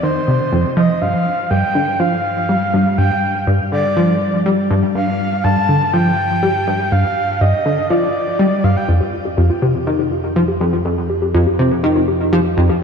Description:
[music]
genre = ambient, sequencer-driven space music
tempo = 122 BPM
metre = 4/4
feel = straight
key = unclear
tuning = A4 = 439 Hz
[part]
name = breathy flute-like synth lead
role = melody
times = 0.0-8.9 s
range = C5 to A5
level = -19 LUFS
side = equal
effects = chorus, shimmer reverb, analog delay
[part]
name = plucky analog bass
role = riff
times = 0.0-12.7 s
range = F2 to G3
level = -16 LUFS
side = equal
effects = lush chorus, analog delay
[part]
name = analog drone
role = bass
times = 0.0-12.8 s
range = F2 to G2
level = -24 LUFS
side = equal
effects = chorus
[part]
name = warbly dusty pluck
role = arpeggios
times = 8.9-12.8 s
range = F4 to G4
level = -20 LUFS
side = left 2 dB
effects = chorus, auto-pan, shimmer reverb, analog delay
[sound]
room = wet concert hall reverb, RT60 2.4 s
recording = dark, warm production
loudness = -14 LUFS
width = side -6 dB against mid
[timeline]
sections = 0.0-1.0 A section; 1.0-12.8 B section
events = filter sweep on analog synth bass 0.0-1.0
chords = 0.0 F5; 1.0 G5; 8.9 Fsus2

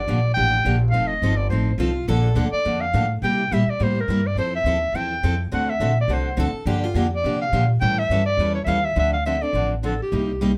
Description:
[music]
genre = acoustic string swing (jazz manouche)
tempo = 210 BPM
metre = 4/4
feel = swing 56% on 8ths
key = D minor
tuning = A4 = 440 Hz
[part]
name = clear clarinet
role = melody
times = 0.0-10.5 s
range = G4 to G5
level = -25 LUFS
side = equal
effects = none
[part]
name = upright bass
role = bass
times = 0.0-10.6 s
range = F1 to C3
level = -25 LUFS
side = equal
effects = none
[part]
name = picked steel-string acoustic guitar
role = accompaniment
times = 0.1-10.5 s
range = C3 to A4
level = -28 LUFS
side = equal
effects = none
[part]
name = picked steel-string acoustic guitar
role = second line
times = 1.8-2.4, 6.4-7.0 s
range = F4 to A4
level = -30 LUFS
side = equal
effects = none
[sound]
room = moderate studio ambience, RT60 0.5 s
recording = none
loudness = -21 LUFS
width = mono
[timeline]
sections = 0.0-9.0 A section; 9.0-10.6 B section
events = none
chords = 0.0 Gm7; 0.9 F7; 2.1 Bbmaj7; 3.2 C7; 4.4 Fmaj7; 5.5 D7; 6.7 Gm7; 7.8 A7; 9.0 Dm7

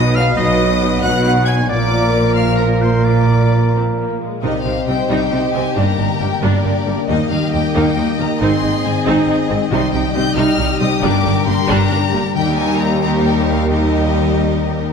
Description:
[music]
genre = cinematic, heroic adventure film score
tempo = 90 BPM (dotted quarters)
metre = 6/8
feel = straight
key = Eb major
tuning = A4 = 438 Hz
[part]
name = rich chamber violin section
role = melody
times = 0.0-14.8 s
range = D5 to Ab6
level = -24 LUFS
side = left 6 dB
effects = none
[part]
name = bright oboe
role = second line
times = 0.0-3.7 s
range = Bb4 to Ab5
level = -23 LUFS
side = right 1 dB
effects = none
[part]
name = mellow French horn section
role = sustained chords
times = 0.0-14.8 s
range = F3 to Eb5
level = -22 LUFS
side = left 2 dB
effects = none
[part]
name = concert harp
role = arpeggios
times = 0.0-14.9 s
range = G2 to F5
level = -23 LUFS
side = left 7 dB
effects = none
[part]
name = mellow trumpet section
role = stabs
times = 0.0-4.2 s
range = Bb4 to B4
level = -22 LUFS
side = right 3 dB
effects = none
[part]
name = rich symphonic cello section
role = bass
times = 0.0-14.8 s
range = Eb2 to C3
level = -21 LUFS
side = right 2 dB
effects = none
[part]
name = warm symphonic double bass section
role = bass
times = 0.0-14.8 s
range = G1 to Eb2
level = -20 LUFS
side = right 3 dB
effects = none
[part]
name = warm symphonic violin section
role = second line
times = 0.2-14.9 s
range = G4 to Ab5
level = -23 LUFS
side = left 2 dB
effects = none
[part]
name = rich symphonic viola section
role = accompaniment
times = 0.2-14.9 s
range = F#3 to F4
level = -22 LUFS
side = right 2 dB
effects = none
[sound]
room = wet scoring stage reverb, RT60 1.8 s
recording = dark, warm production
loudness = -13 LUFS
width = side -6 dB against mid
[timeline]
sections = 0.0-4.4 A section; 4.4-14.9 B section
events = none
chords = 0.0 B; 1.7 Bb; 4.4 Cm; 5.8 Gm; 7.1 Eb; 8.4 Ab; 9.7 Cm; 11.0 Gm; 12.3 Eb

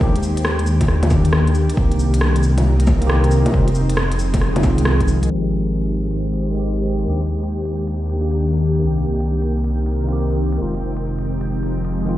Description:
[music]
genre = future garage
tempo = 136 BPM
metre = 4/4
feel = swing 66% on 16ths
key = F dorian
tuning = A4 = 440 Hz
[part]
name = tine electric piano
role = accompaniment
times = 0.0-12.2 s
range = Eb3 to G4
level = -24 LUFS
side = equal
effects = medium stereo tremolo, sidechain pumping, low-pass filter, tape echo
[part]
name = ethereal airy pad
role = sustained chords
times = 0.0-12.2 s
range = C3 to C5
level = -23 LUFS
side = left 1 dB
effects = ensemble chorus, built-in reverb, sidechain pumping
[part]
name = dark detuned saw bass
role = bass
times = 0.0-12.2 s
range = F1 to Eb2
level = -19 LUFS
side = equal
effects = tube saturation, sidechain pumping
[part]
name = electronic kick drum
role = drums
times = 0.0-5.1 s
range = none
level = -19 LUFS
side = equal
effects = overdrive, vintage 12-bit sampler grit
[part]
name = organic electronic drum kit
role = drums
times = 0.2-12.1 s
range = bongos, cabasa, hi-hat, rim click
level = -22 LUFS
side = left 1 dB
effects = overdrive, vintage 12-bit sampler grit
[part]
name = backwards swelling texture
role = texture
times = 6.4-12.2 s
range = G4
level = -35 LUFS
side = equal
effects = built-in reverb
[sound]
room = light reverb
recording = played on a big sound system in a bare room, stone room reverb, vinyl crackle, low-pass filter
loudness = -16 LUFS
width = side -14 dB against mid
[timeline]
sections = 0.0-5.3 A section; 5.3-12.2 B section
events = filter sweep on tine electric piano 5.3-12.2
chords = 0.0 Ebmaj7; 1.8 Cm7; 3.5 Fm7; 5.3 Abmaj7; 7.1 Ebmaj7; 8.8 Cm7; 10.6 Fm7

